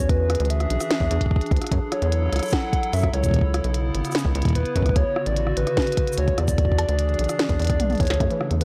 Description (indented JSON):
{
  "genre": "IDM",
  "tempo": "148 BPM",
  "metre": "4/4",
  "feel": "straight",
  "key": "unclear",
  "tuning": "A4 = 440 Hz",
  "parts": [
    { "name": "warbly nostalgic lead", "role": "melody", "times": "0.0-8.6 s", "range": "B4 to F#5", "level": "-29 LUFS", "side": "equal", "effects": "chorus" },
    { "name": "warbly tape-like pad", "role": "sustained chords", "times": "0.0-8.6 s", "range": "C#3 to A4", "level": "-32 LUFS", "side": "equal", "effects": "chorus, built-in reverb" },
    { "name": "rubbery square bass", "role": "bass", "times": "0.0-8.6 s", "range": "G#1 to F#2", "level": "-25 LUFS", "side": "equal", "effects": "tube saturation" },
    { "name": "electronic kick drum", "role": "drums", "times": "0.1-8.3 s", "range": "none", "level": "-25 LUFS", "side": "equal", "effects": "none" },
    { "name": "glitchy drum kit", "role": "drums", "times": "0.1-8.6 s", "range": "cabasa, hi-hat, rim click, snare drum, toms", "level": "-30 LUFS", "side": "equal", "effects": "none" },
    { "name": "warbly dusty pluck", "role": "arpeggios", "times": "8.2-8.6 s", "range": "C#3 to A3", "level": "-30 LUFS", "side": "equal", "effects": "subtle chorus, analog delay" }
  ],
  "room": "digital ambience",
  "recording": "dry, gritty hardware recording, cassette tape",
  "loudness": "-22 LUFS",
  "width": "mono",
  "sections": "0.0-8.2 A section",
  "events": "drum fill 7.8-8.2",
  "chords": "0.1 E7; 1.7 F#m7; 3.3 C#m7; 5.0 Dmaj7; 6.6 E7"
}